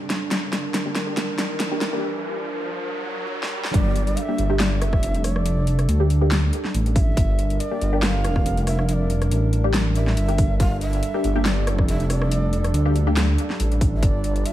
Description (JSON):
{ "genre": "deep dubstep", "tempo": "140 BPM", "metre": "4/4", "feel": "swing 54% on 16ths, half-time", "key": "G dorian", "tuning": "A4 = 440 Hz", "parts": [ { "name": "dark analog pad", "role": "sustained chords", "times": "0.0-14.5 s", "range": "G3 to Bb4", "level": "-29 LUFS", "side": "right 2 dB", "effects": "chorus" }, { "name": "riser", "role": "sound effects", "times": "0.0-3.7 s", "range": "none", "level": "-32 LUFS", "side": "right 2 dB", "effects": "none" }, { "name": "dubstep drum kit", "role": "drums", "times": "0.1-14.5 s", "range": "handclaps, hi-hat, rim click, snare drum", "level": "-26 LUFS", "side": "left 1 dB", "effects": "none" }, { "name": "filtered dub chord stab", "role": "stabs", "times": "0.9-13.2 s", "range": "Bb3 to G4", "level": "-29 LUFS", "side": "left 2 dB", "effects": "phaser, analog chorus, dub echo" }, { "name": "breathy bright long shakuhachi", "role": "melody", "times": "3.7-14.5 s", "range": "D5 to G5", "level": "-31 LUFS", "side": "right 2 dB", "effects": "dub echo" }, { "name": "dark detuned saw bass", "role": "bass", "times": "3.7-14.4 s", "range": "F1 to D2", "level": "-21 LUFS", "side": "equal", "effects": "none" }, { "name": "electronic kick drum", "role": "drums", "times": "3.7-14.1 s", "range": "none", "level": "-21 LUFS", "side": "equal", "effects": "none" } ], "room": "digital ambience", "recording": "echo-heavy mix, vinyl crackle, high-pass filter", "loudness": "-19 LUFS", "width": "side -13 dB against mid", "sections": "0.0-3.7 A section; 3.7-14.5 B section", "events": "build-up 0.0-3.7; drum fill 0.0-2.0, 3.4-3.7; riser 0.0-3.7; filter sweep on synth stab 0.0-3.7; break 2.0-3.7; drop 3.7-14.5", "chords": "0.0 Gm" }